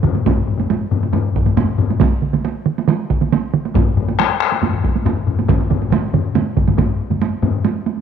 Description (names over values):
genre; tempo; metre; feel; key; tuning
japanese traditional, taiko drum ensemble; 138 BPM; 4/4; straight; none; none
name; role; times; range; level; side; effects
solo taiko drums; percussion; 0.0-7.2 s; none; -19 LUFS; right 7 dB; none
taiko ensemble; percussion; 0.0-7.5 s; none; -18 LUFS; left 6 dB; none
taiko ensemble; percussion; 0.1-8.0 s; none; -21 LUFS; right 9 dB; none
solo taiko drums; percussion; 0.3-6.9 s; none; -21 LUFS; right 1 dB; none
room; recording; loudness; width
light reverb, studio ambience; 1960s-style stereo with parts hard left and right; -15 LUFS; side -8 dB against mid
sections
0.0-7.2 A section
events
none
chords
none